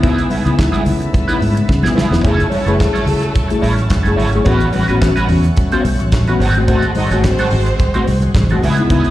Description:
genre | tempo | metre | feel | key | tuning
disco | 108 BPM | 4/4 | straight | unclear | A4 = 441 Hz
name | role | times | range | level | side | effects
electric guitar at the edge of break-up | accompaniment | 0.0-9.1 s | B3 to C#5 | -21 LUFS | right 4 dB | wah, slapback echo
mellow tine electric piano | accompaniment | 0.0-9.1 s | G#2 to G#4 | -18 LUFS | left 3 dB | medium stereo tremolo, slapback echo
bright tonewheel organ | sustained chords | 0.0-9.1 s | C#3 to A4 | -24 LUFS | equal | overdrive, chorus vibrato, slow rotary speaker
fingered electric bass | bass | 0.0-9.0 s | E1 to C#3 | -16 LUFS | equal | none
damped 70s drum kit | drums | 0.0-9.1 s | handclaps, hi-hat, kick drum, snare drum | -18 LUFS | equal | none
congas | percussion | 0.3-9.0 s | none | -24 LUFS | left 2 dB | slapback echo
warm studio violin section | second line | 2.5-3.6, 7.0-8.0 s | A3 to D#5 | -23 LUFS | right 2 dB | slapback echo
room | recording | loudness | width
light reverb | live gig heard through the venue's PA, recital hall reverb | -12 LUFS | side -14 dB against mid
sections
0.0-9.1 A section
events
drum fill 1.7-2.2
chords
0.0 C#m7; 2.2 F#m7; 4.5 A69; 6.4 G#7b9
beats
| 0.04 0.59 1.14 1.69 | 2.24 2.80 3.35 3.90 | 4.46 5.01 5.57 6.12 | 6.68 7.24 7.79 8.35 | 8.90

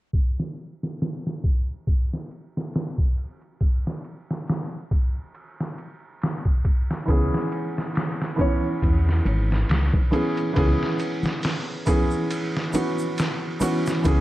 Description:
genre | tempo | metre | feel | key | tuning
trip hop | 69 BPM | 4/4 | swing 55% on 16ths | C# minor | A4 = 439 Hz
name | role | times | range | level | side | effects
trip hop sampler-style drum kit | drums | 0.1-14.2 s | hi-hat, kick drum, ride cymbal, snare drum | -24 LUFS | equal | none
felt-muted upright piano | accompaniment | 7.1-14.2 s | E3 to C#5 | -24 LUFS | right 1 dB | harmonic tremolo, tape echo
dark detuned saw bass | bass | 7.1-14.2 s | G#1 to E2 | -21 LUFS | equal | none
tube shaker and congas | percussion | 7.1-14.2 s | none | -30 LUFS | left 1 dB | none
room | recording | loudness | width
little or no reverb | vinyl crackle, low-pass filter | -22 LUFS | side -16 dB against mid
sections
0.1-14.0 A section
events
filter sweep 0.1-14.0; kick drops out 12.3-14.0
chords
0.1 C#m7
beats
| 0.13 1.00 1.87 2.74 | 3.61 4.48 5.35 6.22 | 7.09 7.96 8.82 9.69 | 10.56 11.43 12.30 13.17 | 14.04

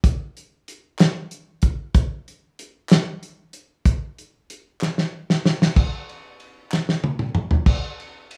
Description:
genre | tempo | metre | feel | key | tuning
gospel | 63 BPM (dotted quarters) | 6/8 | straight | none | none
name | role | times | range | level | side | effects
warm soul drum kit | drums | 0.0-8.4 s | crash cymbal, hi-hat, kick drum, ride cymbal, snare drum, toms | -20 LUFS | equal | none
group handclap | percussion | 1.0-7.0 s | none | -36 LUFS | equal | none
room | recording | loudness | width
moderate studio reverb, RT60 0.6 s | rough home demo mix, small room ambience | -21 LUFS | mono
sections
0.0-5.8 A section; 5.8-7.7 B section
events
drum fill 4.8-5.8, 6.7-7.7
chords
none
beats
| 0.04 0.99 | 1.95 2.90 | 3.85 4.81 | 5.76 6.71 | 7.66

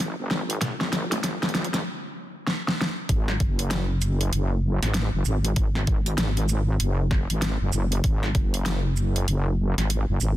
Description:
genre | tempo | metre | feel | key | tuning
glitch hop | 97 BPM | 4/4 | swing 62% on 16ths | unclear | A4 = 440 Hz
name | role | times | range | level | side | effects
wobble bass | bass | 0.0-10.4 s | F#1 to G#1 | -24 LUFS | equal | chorus, high-pass filter
electronic kick drum | drums | 0.0-8.5 s | none | -24 LUFS | equal | overdrive, high-pass filter on kick, high-pass filter on room
pop drum kit | drums | 0.0-10.4 s | hi-hat, shaker, snare drum | -28 LUFS | equal | overdrive
room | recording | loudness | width
little or no reverb | dense, heavily limited modern master | -22 LUFS | side -14 dB against mid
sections
0.0-3.1 A section; 3.1-10.4 B section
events
build-up 0.0-3.1; drum fill 0.0-1.9, 2.5-3.1; stop 1.9-3.1; drop 3.1-10.4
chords
none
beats
0.00 | 0.62 1.24 1.85 2.47 | 3.09 3.71 4.33 4.95 | 5.57 6.18 6.80 7.42 | 8.04 8.66 9.28 9.89

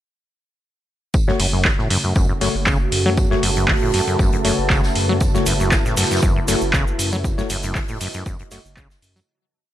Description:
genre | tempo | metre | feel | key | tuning
acid house | 118 BPM | 4/4 | swing 54% on 16ths | F# dorian | A4 = 444 Hz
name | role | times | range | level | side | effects
warm analog pad | sustained chords | 1.1-9.2 s | C#3 to F#4 | -27 LUFS | right 1 dB | chorus, sidechain pumping
electronic kick drum | drums | 1.1-8.9 s | none | -20 LUFS | equal | none
loose indie drum kit | drums | 1.1-9.3 s | hi-hat, snare drum, tambourine | -32 LUFS | left 1 dB | sidechain pumping on hats, high-pass filter on hats, high-pass filter on snare, sidechain pumping on perc, high-pass filter on perc, high-pass filter on room
deep dark ambient pad | texture | 2.5-9.3 s | F#4 to A5 | -26 LUFS | right 2 dB | chorus, built-in reverb, sidechain pumping
acid bass, saw | riff | 1.3-9.2 s | F#2 to A3 | -24 LUFS | equal | tube saturation, vintage 12-bit sampler grit, sidechain pumping, ping-pong delay
percussive organ stab | stabs | 1.3-8.6 s | A3 to C#5 | -26 LUFS | left 5 dB | chorus, ping-pong delay
saturated sub bass | bass | 1.4-9.2 s | F#1 to F#2 | -25 LUFS | equal | sidechain pumping
electro analog drum machine | drums | 1.4-9.1 s | handclaps, hi-hat | -22 LUFS | equal | none
tube shaker | percussion | 5.2-9.3 s | none | -31 LUFS | right 3 dB | none
room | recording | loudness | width
light reverb, studio reverb | none | -16 LUFS | side -12 dB against mid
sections
1.1-9.3 groove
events
fade-out 6.6-9.3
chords
1.1 F#m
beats
| 1.14 1.65 2.16 2.67 | 3.18 3.69 4.19 4.70 | 5.21 5.72 6.23 6.74 | 7.24 7.75 8.26 8.77

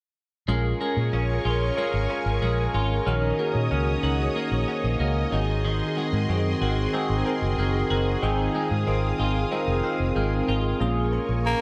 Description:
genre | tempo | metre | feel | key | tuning
pop | 93 BPM | 4/4 | straight | Bb minor | A4 = 440 Hz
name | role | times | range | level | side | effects
bell-like tine electric piano | accompaniment | 0.5-11.6 s | Bb3 to Ab5 | -29 LUFS | equal | phaser
string machine, violas | sustained chords | 0.5-11.6 s | Ab4 to Eb6 | -35 LUFS | equal | ensemble chorus
twelve-string electric guitar | riff | 0.5-11.4 s | Eb3 to Gb4 | -33 LUFS | equal | subtle chorus, digital delay
vintage muted fingered electric bass | bass | 0.5-11.5 s | F1 to Bb2 | -28 LUFS | equal | none
raspy tenor saxophone | melody | 11.5-11.6 s | Bb3 | -25 LUFS | equal | none
room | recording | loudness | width
moderate spring reverb, RT60 2.3 s | none | -25 LUFS | mono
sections
0.5-10.8 A section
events
none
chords
0.5 Bbm7; 3.1 Ebm7/Bb; 5.3 Ab7; 8.2 Fm7/Ab; 10.8 Bbm7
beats
| 0.48 1.13 1.77 2.42 | 3.07 3.71 4.36 5.00 | 5.65 6.29 6.94 7.58 | 8.23 8.87 9.52 10.16 | 10.81 11.45

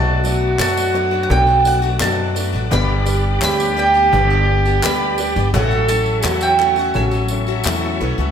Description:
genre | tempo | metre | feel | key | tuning
indie folk with a building arrangement | 85 BPM | 4/4 | straight | unclear | A4 = 444 Hz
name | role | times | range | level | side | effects
mandolin | melody | 0.0-7.6 s | E5 to B5 | -20 LUFS | right 3 dB | none
warm French horn | second line | 0.0-8.3 s | E4 to A4 | -21 LUFS | right 2 dB | ping-pong delay
picked acoustic archtop guitar | accompaniment | 0.0-8.3 s | G2 to G4 | -25 LUFS | left 10 dB | wide subtle chorus
warm upright piano | accompaniment | 0.0-8.3 s | G1 to E5 | -27 LUFS | right 4 dB | wide subtle chorus
bright tonewheel organ | sustained chords | 0.0-8.3 s | F#3 to D6 | -28 LUFS | left 1 dB | slow rotary speaker, chorus vibrato
upright bass | bass | 0.0-8.3 s | G1 to F#2 | -19 LUFS | equal | none
cajon | drums | 0.2-8.3 s | none | -28 LUFS | equal | none
tambourine | percussion | 0.2-7.8 s | none | -31 LUFS | right 7 dB | none
group handclap | percussion | 0.6-7.8 s | none | -27 LUFS | left 7 dB | none
room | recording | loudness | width
light reverb, small room ambience | bright 1980s-style digital production | -14 LUFS | side -8 dB against mid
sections
0.0-8.3 A section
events
none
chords
0.0 Bm7; 2.7 G; 5.5 A6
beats
0.59 1.30 2.01 | 2.71 3.42 4.12 4.83 | 5.54 6.24 6.95 7.66

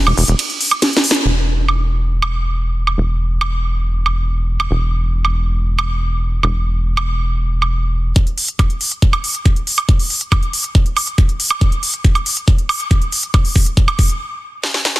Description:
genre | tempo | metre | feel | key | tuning
psychedelic trance | 139 BPM | 4/4 | straight | unclear | A4 = 440 Hz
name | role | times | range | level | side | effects
tight sequencer bass | bass | 0.1-8.1 s | E1 | -16 LUFS | equal | none
techno drum kit | drums | 0.1-15.0 s | hi-hat, ride cymbal, snare drum, woodblock | -18 LUFS | right 1 dB | overdrive, high-pass filter on hats, high-pass filter on perc, high-pass filter on cymbals, high-pass filter on snare
electronic kick drum | drums | 8.2-14.1 s | none | -12 LUFS | equal | none
room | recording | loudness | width
light reverb | dense, heavily limited modern master | -14 LUFS | side -17 dB against mid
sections
0.0-1.3 A section; 1.3-8.2 B section; 8.2-15.0 C section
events
drop 0.0-1.3; drum fill 0.8-1.3, 11.6-14.2, 14.6-15.0; band accent 1.1; build-up 8.2-15.0; stop 14.2-15.0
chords
none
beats
0.39 0.82 | 1.25 1.69 2.12 2.55 | 2.98 3.41 3.84 4.28 | 4.71 5.14 5.57 6.00 | 6.43 6.87 7.30 7.73 | 8.16 8.59 9.02 9.46 | 9.89 10.32 10.75 11.18 | 11.61 12.04 12.48 12.91 | 13.34 13.77 14.20 14.63

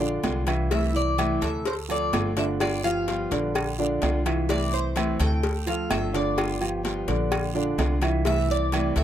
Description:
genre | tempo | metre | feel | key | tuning
latin, Cuban son and guajira | 127 BPM | 4/4 | straight | C major | A4 = 438 Hz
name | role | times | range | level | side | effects
nylon-string guitar | accompaniment | 0.0-9.0 s | C3 to F4 | -30 LUFS | left 2 dB | none
dark baby grand piano | arpeggios | 0.0-9.0 s | D3 to E5 | -28 LUFS | right 2 dB | none
upright bass | bass | 0.0-9.0 s | G1 to D2 | -28 LUFS | equal | none
cowbell | percussion | 0.2-9.0 s | none | -33 LUFS | left 4 dB | none
guiro | percussion | 0.2-9.0 s | none | -40 LUFS | right 6 dB | none
timbales and agogo bells | percussion | 0.2-9.0 s | none | -32 LUFS | right 2 dB | none
Cuban tres | melody | 0.7-9.0 s | C5 to G5 | -29 LUFS | right 1 dB | none
room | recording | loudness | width
little or no reverb | close, detailed microphones | -22 LUFS | side -10 dB against mid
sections
0.0-9.0 A section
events
none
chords
0.0 Bb9; 0.7 C6; 1.7 Dm7; 2.6 G7; 3.5 Bb9; 4.5 C6; 5.4 Dm7; 6.4 G7; 7.3 Bb9; 8.3 C6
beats
0.24 | 0.71 1.19 1.66 2.13 | 2.60 3.08 3.55 4.02 | 4.49 4.96 5.43 5.91 | 6.38 6.85 7.32 7.79 | 8.26 8.73

